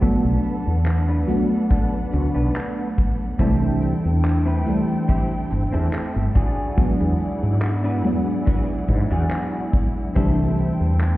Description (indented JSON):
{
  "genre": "vaporwave",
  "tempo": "71 BPM",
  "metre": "4/4",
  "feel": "straight",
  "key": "C lydian",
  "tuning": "A4 = 436 Hz",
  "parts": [
    { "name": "FM electric piano with soft pad layer", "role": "accompaniment", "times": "0.0-11.2 s", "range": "E3 to D4", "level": "-23 LUFS", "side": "equal", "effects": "ensemble chorus, tape echo" },
    { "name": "warm studio string section", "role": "sustained chords", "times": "0.0-11.2 s", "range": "C4 to G5", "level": "-32 LUFS", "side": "equal", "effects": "none" },
    { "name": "clean electric guitar", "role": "riff", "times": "0.0-10.7 s", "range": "B3 to B4", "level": "-30 LUFS", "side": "equal", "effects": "ensemble chorus, vintage 12-bit sampler grit, low-pass filter, tape echo" },
    { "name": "woody fretless electric bass", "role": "bass", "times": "0.0-11.2 s", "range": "G1 to G#2", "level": "-20 LUFS", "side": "equal", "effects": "ensemble chorus" },
    { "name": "huge arena drum kit", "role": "drums", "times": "0.0-11.2 s", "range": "handclaps, hi-hat", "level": "-38 LUFS", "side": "equal", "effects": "none" },
    { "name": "kick drum", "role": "drums", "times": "0.0-10.3 s", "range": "none", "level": "-23 LUFS", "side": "equal", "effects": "none" }
  ],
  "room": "light reverb, studio reverb",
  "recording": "heard muffled through a wall, stone room reverb, cassette tape, EQ",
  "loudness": "-18 LUFS",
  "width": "side -16 dB against mid",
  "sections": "0.0-11.2 A section",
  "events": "filter sweep on clean electric guitar 0.0-11.2",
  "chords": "0.0 Bm7; 3.4 C6; 6.4 E9; 10.2 C6",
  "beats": "| 0.02 0.86 1.71 2.55 | 3.40 4.25 5.09 5.93 | 6.78 7.62 8.47 9.31 | 10.16 11.01"
}